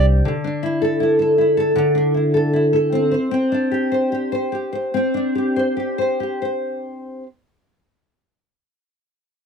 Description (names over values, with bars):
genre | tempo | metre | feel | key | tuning
pop | 68-80 BPM | 4/4 | straight | C major | A4 = 441 Hz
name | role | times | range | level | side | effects
nylon-string guitar | accompaniment | 0.0-7.2 s | D3 to C5 | -17 LUFS | equal | double-tracked left and right
room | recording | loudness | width
light reverb | dry, close 1970s-style studio recording | -17 LUFS | side -6 dB against mid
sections
0.2-6.6 A section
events
slowing down 0.2-6.6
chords
0.2 Dsus2; 2.9 Csus2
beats
| 0.24 1.00 1.75 2.52 | 3.31 4.10 4.92 5.76